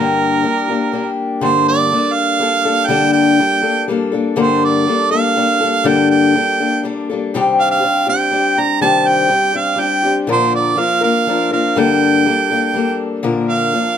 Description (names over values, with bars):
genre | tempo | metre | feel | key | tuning
rock | 122 BPM | 3/4 | straight | G minor | A4 = 438 Hz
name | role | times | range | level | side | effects
clear harmonica | melody | 0.0-14.0 s | Bb4 to Bb5 | -16 LUFS | right 5 dB | none
picked old ladder-braced acoustic guitar | accompaniment | 0.0-14.0 s | G2 to Bb4 | -15 LUFS | left 4 dB | none
room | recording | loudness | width
light reverb | dark, warm production | -13 LUFS | side -9 dB against mid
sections
0.0-1.4 A section; 1.4-13.2 B section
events
none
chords
0.0 Gm; 1.4 Gmadd9; 7.3 Cmadd9; 10.3 Bb; 11.8 Gmadd9; 13.2 Bb